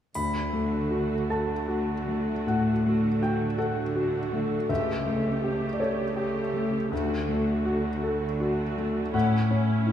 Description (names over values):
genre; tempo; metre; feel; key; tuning
classical, romantic movement for piano and orchestra; 54 BPM (dotted quarters); 12/8; rubato; D major; A4 = 440 Hz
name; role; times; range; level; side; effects
triangle; percussion; 0.1-1.7 s; none; -45 LUFS; left 3 dB; none
clear grand piano; melody; 0.2-9.9 s; C#2 to B5; -25 LUFS; left 1 dB; none
rich symphonic cello section; bass; 0.2-9.9 s; A2 to D3; -34 LUFS; right 4 dB; none
rich symphonic viola section; accompaniment; 0.5-9.9 s; A3 to G4; -33 LUFS; right 3 dB; none
room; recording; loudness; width
wet recital hall reverb, RT60 1.7 s; recorded in a church or concert hall; -24 LUFS; side -10 dB against mid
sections
0.1-9.9 A section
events
none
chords
0.1 D; 4.7 A7/C#; 6.9 D; 9.1 A